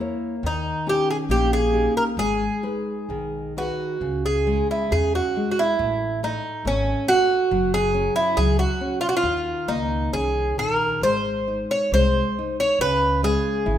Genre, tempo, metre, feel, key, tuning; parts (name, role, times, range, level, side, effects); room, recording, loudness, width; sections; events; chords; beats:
fado-style ballad; 69 BPM; 2/4; rubato; G# harmonic minor, C# minor from 4.0 s; A4 = 440 Hz
nylon-string guitar; accompaniment; 0.0-13.8 s; C#3 to C#5; -28 LUFS; left 3 dB
upright bass; bass; 0.0-13.8 s; F#1 to E2; -26 LUFS; equal
Irish bouzouki; melody; 0.5-13.8 s; C#4 to C#5; -21 LUFS; right 1 dB
moderate recital hall reverb, RT60 1.4 s; minimal, uncompressed stereo recording; -20 LUFS; side -10 dB against mid
0.0-4.0 A section; 4.0-13.8 B section
0.4 D#7; 2.2 G#m; 4.0 C#m; 5.8 F#m13; 7.5 F#5; 9.2 D#5; 11.0 G#; 12.8 C#m
| 0.44 1.30 | 2.18 3.10 | 4.02 4.92 | 5.79 6.66 | 7.51 8.37 | 9.24 10.13 | 11.04 11.93 | 12.81 13.66